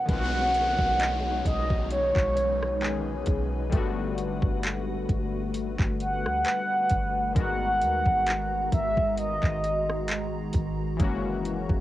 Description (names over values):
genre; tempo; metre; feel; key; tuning
contemporary R&B; 66 BPM; 4/4; swing 54% on 16ths; B major; A4 = 440 Hz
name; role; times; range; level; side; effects
mellow horn-like synth lead; melody; 0.0-10.5 s; C#5 to F#5; -26 LUFS; equal; chorus, analog delay
warm analog keys; accompaniment; 0.0-11.8 s; D3 to A#4; -34 LUFS; left 6 dB; chorus, cassette tape
swell and downlifter; sound effects; 0.0-7.4 s; none; -39 LUFS; equal; none
glassy FM pad; sustained chords; 0.6-11.8 s; D#3 to A#5; -35 LUFS; right 1 dB; ensemble chorus, built-in reverb, cassette tape
clean 808-style bass; bass; 0.1-11.8 s; F#1 to D#2; -32 LUFS; equal; none
trap drum kit; drums; 0.1-11.8 s; crash cymbal, handclaps, hi-hat, kick drum, rim click; -28 LUFS; equal; cassette tape
soft round pluck; texture; 1.0-7.8 s; B4 to D#5; -44 LUFS; right 6 dB; none
room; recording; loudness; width
light reverb; home recording on cassette; -24 LUFS; side -14 dB against mid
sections
0.1-11.8 A section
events
none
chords
0.1 B69; 3.7 Gmaj9; 7.4 G#m9; 11.0 F#7